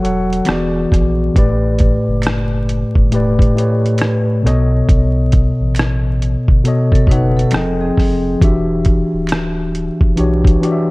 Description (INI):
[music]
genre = lo-fi hip hop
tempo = 68 BPM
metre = 4/4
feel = swing 62% on 16ths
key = E dorian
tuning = A4 = 443 Hz
[part]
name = mellow tine electric piano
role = accompaniment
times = 0.0-10.9 s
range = A2 to G5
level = -15 LUFS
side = left 1 dB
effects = medium stereo tremolo, cassette tape
[part]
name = soft dub sub bass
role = bass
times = 0.0-10.6 s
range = D1 to B1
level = -20 LUFS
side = equal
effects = none
[part]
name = lo-fi sampler-style drum kit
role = drums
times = 0.0-10.9 s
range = hi-hat, kick drum, rim click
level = -14 LUFS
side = equal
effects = none
[part]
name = finger snaps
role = percussion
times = 0.5-9.5 s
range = none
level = -34 LUFS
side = right 4 dB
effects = none
[part]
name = vibraphone with hard mallets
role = second line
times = 6.9-8.4 s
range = C4 to B4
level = -23 LUFS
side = right 1 dB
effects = tape echo
[sound]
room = light reverb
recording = dark, warm production, vinyl crackle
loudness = -12 LUFS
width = side -22 dB against mid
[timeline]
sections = 0.0-10.9 A section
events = none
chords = 0.5 E7; 1.4 A7sus4; 4.4 B7; 7.5 Fm7; 8.4 Em7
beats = 0.47 | 1.35 2.23 3.12 4.00 | 4.88 5.76 6.64 7.53 | 8.41 9.29 10.18